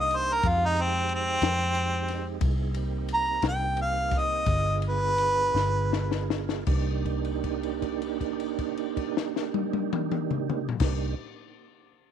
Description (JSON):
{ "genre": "slow blues", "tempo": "52-61 BPM (dotted quarters)", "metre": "12/8", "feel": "straight", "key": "C minor", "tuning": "A4 = 440 Hz", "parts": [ { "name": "warm harmonica", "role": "melody", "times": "0.0-6.3 s", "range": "C4 to Bb5", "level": "-25 LUFS", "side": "equal", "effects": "slapback echo" }, { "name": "tonewheel organ", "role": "sustained chords", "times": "0.0-11.2 s", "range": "D3 to Ab4", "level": "-33 LUFS", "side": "right 14 dB", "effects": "slow rotary speaker, chorus vibrato" }, { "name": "vintage muted fingered electric bass", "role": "bass", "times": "0.0-11.1 s", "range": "G1 to F2", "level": "-30 LUFS", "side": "equal", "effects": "none" }, { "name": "compact cocktail drum kit", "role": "drums", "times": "0.1-11.0 s", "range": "crash cymbal, kick drum, ride cymbal, snare drum, toms", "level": "-30 LUFS", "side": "left 5 dB", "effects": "none" } ], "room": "light reverb", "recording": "1960s-style stereo", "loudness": "-25 LUFS", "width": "side -8 dB against mid", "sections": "0.0-6.7 A section; 6.7-11.3 B section", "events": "harmonica solo 0.0-6.7; slowing down 1.1-6.7; drum fill 5.5-6.7; held note 6.7-10.8", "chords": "0.4 Fm7; 2.4 Cm7; 4.5 G7b9; 6.7 Cm7" }